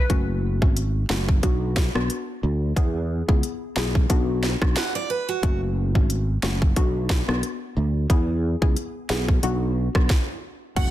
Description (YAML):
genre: dancehall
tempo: 90 BPM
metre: 4/4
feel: swing 56% on 16ths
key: B dorian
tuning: A4 = 440 Hz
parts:
  - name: glassy wavetable pluck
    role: melody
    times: 0.0-0.1, 10.8-10.9 s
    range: F#5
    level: -31 LUFS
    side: equal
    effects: chorus, ping-pong delay
  - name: soft round pluck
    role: accompaniment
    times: 0.1-10.9 s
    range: A3 to G#4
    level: -29 LUFS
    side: left 4 dB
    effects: chorus
  - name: sustaining fretless electric bass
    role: bass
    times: 0.1-10.9 s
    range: F#1 to E2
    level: -24 LUFS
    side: equal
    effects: ensemble chorus
  - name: island pop drum kit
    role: drums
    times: 0.1-10.9 s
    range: crash cymbal, hi-hat, kick drum, rim click, snare drum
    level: -22 LUFS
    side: equal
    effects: overdrive
  - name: picked steel-string acoustic guitar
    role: arpeggios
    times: 4.8-5.6 s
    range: F#4 to F#5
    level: -27 LUFS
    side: right 6 dB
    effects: none
  - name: impact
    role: sound effects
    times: 10.8-10.9 s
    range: none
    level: -29 LUFS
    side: equal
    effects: none
room: digital ambience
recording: dense, heavily limited modern master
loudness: -20 LUFS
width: side -14 dB against mid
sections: 0.1-10.8 A section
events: stop 10.1-10.8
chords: 0.1 F#m; 1.4 Bm; 2.8 E; 4.1 Bm; 5.4 F#m; 6.8 Bm; 8.1 E; 9.4 Bm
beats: | 0.10 0.77 1.43 2.10 | 2.77 3.43 4.10 4.76 | 5.43 6.10 6.76 7.43 | 8.10 8.77 9.43 10.10 | 10.77